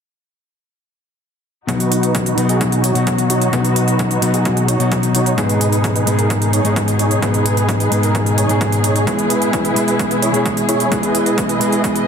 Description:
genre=EDM, festival progressive house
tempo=130 BPM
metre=4/4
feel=straight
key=B major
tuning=A4 = 440 Hz
part: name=mellow electric guitar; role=accompaniment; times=1.7-12.1 s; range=G#2 to G#4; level=-17 LUFS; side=left 2 dB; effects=sidechain pumping
part: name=muted studio string section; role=sustained chords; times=1.7-12.1 s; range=B2 to D#5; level=-24 LUFS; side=equal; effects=sidechain pumping, low-pass filter
part: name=supersaw chords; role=riff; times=1.7-12.0 s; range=D#4 to C#5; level=-20 LUFS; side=right 2 dB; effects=sidechain pumping, low-pass filter, dub echo
part: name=electronic hi-hat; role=drums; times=1.7-12.0 s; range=none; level=-23 LUFS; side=right 3 dB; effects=overdrive
part: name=electronic kick drum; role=drums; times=1.7-11.9 s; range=none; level=-24 LUFS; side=right 1 dB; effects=overdrive, high-pass filter on kick, high-pass filter on room
room=moderate lush hall reverb, RT60 1.7 s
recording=dense, heavily limited modern master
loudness=-14 LUFS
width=side -7 dB against mid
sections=1.7-12.1 A section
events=filter sweep on string section 1.7-12.1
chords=1.7 B; 5.4 G#m; 9.1 E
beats=| 1.69 2.15 2.61 3.07 | 3.53 3.99 4.46 4.92 | 5.38 5.84 6.30 6.76 | 7.22 7.69 8.15 8.61 | 9.07 9.53 9.99 10.46 | 10.92 11.38 11.84

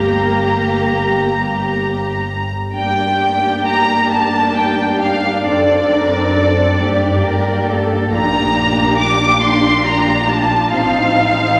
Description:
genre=classical, slow romantic movement for string orchestra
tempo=45 BPM (dotted quarters)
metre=6/8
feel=uneven beats, rubato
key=G minor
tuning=A4 = 440 Hz
part: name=warm symphonic violin section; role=melody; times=0.0-11.6 s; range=D5 to D6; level=-18 LUFS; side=equal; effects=none
part: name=warm chamber violin section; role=second line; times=0.0-11.6 s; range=F4 to F5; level=-25 LUFS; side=equal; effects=none
part: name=dark studio viola section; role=accompaniment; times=0.0-11.6 s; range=Bb3 to Eb4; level=-21 LUFS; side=equal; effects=none
part: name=rich chamber double bass section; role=bass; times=0.0-11.6 s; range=G1 to G2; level=-24 LUFS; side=equal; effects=none
part: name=warm chamber cello section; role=bass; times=0.0-11.6 s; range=G2 to Bb4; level=-27 LUFS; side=equal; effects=none
room=wet concert hall reverb, RT60 2.5 s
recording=none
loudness=-15 LUFS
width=mono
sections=0.0-2.7 A section; 2.7-11.6 B section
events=none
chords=0.0 Gm; 5.5 D7/F#; 6.8 Gm; 8.1 Bb; 10.7 F7/A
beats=1.12 | 2.74 4.12 | 5.47 6.84 | 8.14 9.43 | 10.73

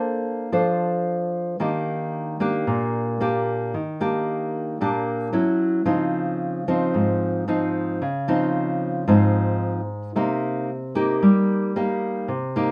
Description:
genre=bossa nova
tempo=112 BPM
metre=4/4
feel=straight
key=unclear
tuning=A4 = 441 Hz
part: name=nylon-string guitar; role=solo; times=0.0-12.7 s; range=Ab2 to C5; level=-23 LUFS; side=equal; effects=none
room=moderate small room reverb, RT60 0.5 s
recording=none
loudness=-23 LUFS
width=mono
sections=0.0-12.7 A section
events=none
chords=0.0 Bbmaj9; 1.6 Ebmaj7; 5.3 Dbmadd11/Gb; 5.9 Dbmaj9; 10.2 Cm7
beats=0.53 1.06 | 1.60 2.13 2.67 3.20 | 3.74 4.28 4.81 5.34 | 5.88 6.41 6.95 7.48 | 8.02 8.55 9.09 9.62 | 10.16 10.69 11.22 11.76 | 12.29

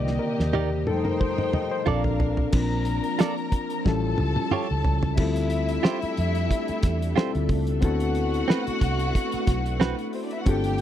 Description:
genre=lush 1970s-style soul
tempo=91 BPM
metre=4/4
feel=swing 54% on 16ths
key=unclear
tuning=A4 = 440 Hz
part: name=dark studio string section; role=second line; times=0.0-10.8 s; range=Bb3 to Bb5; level=-31 LUFS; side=left 1 dB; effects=none
part: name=overdriven reed electric piano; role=accompaniment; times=0.0-10.8 s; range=D3 to Eb5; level=-29 LUFS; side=left 5 dB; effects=none
part: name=soft string machine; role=sustained chords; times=0.0-10.8 s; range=C3 to E5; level=-33 LUFS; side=equal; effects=ensemble chorus
part: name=vintage muted fingered electric bass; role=bass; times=0.0-10.8 s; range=G1 to F2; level=-26 LUFS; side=right 1 dB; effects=none
part: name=cloth-damped thuddy drum kit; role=drums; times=0.1-10.8 s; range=crash cymbal, hi-hat, kick drum, snare drum, toms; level=-24 LUFS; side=right 1 dB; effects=none
part: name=direct-recorded clean electric guitar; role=riff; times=0.5-10.0 s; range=C4 to D5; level=-27 LUFS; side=right 10 dB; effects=none
room=little or no reverb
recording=dry, close 1970s-style studio recording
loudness=-22 LUFS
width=side -11 dB against mid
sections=0.0-2.5 A section; 2.5-5.2 B section; 5.2-10.8 C section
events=drum fill 0.0-2.5, 3.9-5.2; reed electric piano solo 0.0-2.5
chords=0.0 Cm9; 0.9 F9; 1.9 Bbmaj7; 2.5 Bb; 3.9 A7b13; 5.2 Dm11; 7.8 D13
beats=0.55 1.21 1.87 | 2.53 3.20 3.86 4.52 | 5.18 5.84 6.50 7.16 | 7.82 8.48 9.14 9.81 | 10.47

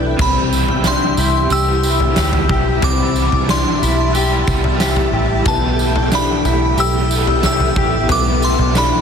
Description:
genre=dream pop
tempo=91 BPM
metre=4/4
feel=straight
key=unclear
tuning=A4 = 440 Hz
part: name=string machine, violins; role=sustained chords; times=0.0-9.0 s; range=E4 to A5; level=-22 LUFS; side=equal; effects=ensemble chorus
part: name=mellow electric guitar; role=arpeggios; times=0.0-9.0 s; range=B3 to G4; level=-22 LUFS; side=left 6 dB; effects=ensemble chorus, ping-pong delay
part: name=vintage muted fingered electric bass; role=bass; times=0.0-8.9 s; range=A1 to D2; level=-19 LUFS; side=right 1 dB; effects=none
part: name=glassy synth bell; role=melody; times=0.2-9.0 s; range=A5 to E6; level=-20 LUFS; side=left 1 dB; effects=chorus, phaser, ping-pong delay
part: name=crunchy overdriven guitar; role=accompaniment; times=0.2-9.0 s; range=B2 to E4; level=-24 LUFS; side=right 4 dB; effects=tremolo, ensemble chorus
part: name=huge arena drum kit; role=drums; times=0.2-8.9 s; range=crash cymbal, kick drum, snare drum, tambourine, toms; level=-19 LUFS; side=equal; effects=none
room=light reverb, small room reverb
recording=dense, heavily limited modern master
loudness=-13 LUFS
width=side -7 dB against mid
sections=0.2-9.0 A section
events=none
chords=0.0 G69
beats=| 0.18 0.84 1.50 2.16 | 2.82 3.48 4.14 4.80 | 5.46 6.12 6.78 7.44 | 8.10 8.76

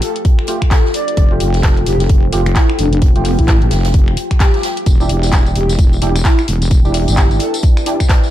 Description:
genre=bass house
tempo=130 BPM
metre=4/4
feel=swing 60% on 16ths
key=unclear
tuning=A4 = 442 Hz
part: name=breathy flute-like synth lead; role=melody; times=0.0-7.6 s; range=B3 to D5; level=-22 LUFS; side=equal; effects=analog chorus, dub echo
part: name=percussive organ stab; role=stabs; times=0.0-8.0 s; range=A3 to G4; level=-22 LUFS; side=right 2 dB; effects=ensemble chorus, cassette tape, sidechain pumping, dub echo
part: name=house drum kit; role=drums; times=0.0-8.3 s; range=finger snaps, handclaps, hi-hat, tambourine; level=-22 LUFS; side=left 1 dB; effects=none
part: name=swinging big-band drum kit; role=drums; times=0.0-8.3 s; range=hi-hat, snare drum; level=-30 LUFS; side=right 2 dB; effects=high-pass filter on hats, high-pass filter on snare, high-pass filter on room
part: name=deep dark ambient pad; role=texture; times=0.0-8.3 s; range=E4 to G5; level=-24 LUFS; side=left 3 dB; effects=chorus, built-in reverb, sidechain pumping
part: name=electronic kick drum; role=drums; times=0.2-8.2 s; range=none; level=-11 LUFS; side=equal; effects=none
part: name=wobble bass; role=bass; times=1.2-7.4 s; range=E1 to A1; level=-15 LUFS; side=equal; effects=chorus, overdrive, sidechain pumping
room=little or no reverb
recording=dark, warm production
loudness=-11 LUFS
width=side -13 dB against mid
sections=0.0-8.3 A section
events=none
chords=0.0 Fadd9; 4.9 Em7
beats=0.25 0.71 | 1.17 1.63 2.10 2.56 | 3.02 3.48 3.94 4.40 | 4.86 5.33 5.79 6.25 | 6.71 7.17 7.63 8.10

